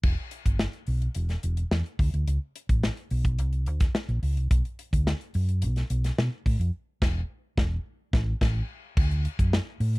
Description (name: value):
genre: polished 1980s jazz-funk pop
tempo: 107 BPM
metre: 4/4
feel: straight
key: unclear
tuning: A4 = 441 Hz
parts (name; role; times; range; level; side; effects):
- hollow-body short-scale fingered electric bass; bass; 0.0-10.0 s; E1 to B2; -26 LUFS; equal; none
- modern studio drum kit; drums; 0.0-10.0 s; crash cymbal, hi-hat, kick drum, snare drum; -26 LUFS; equal; none
room: little or no reverb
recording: dry, close 1970s-style studio recording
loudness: -24 LUFS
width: side -24 dB against mid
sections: 0.0-9.0 A section; 9.0-10.0 B section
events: band accent 6.7-9.0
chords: none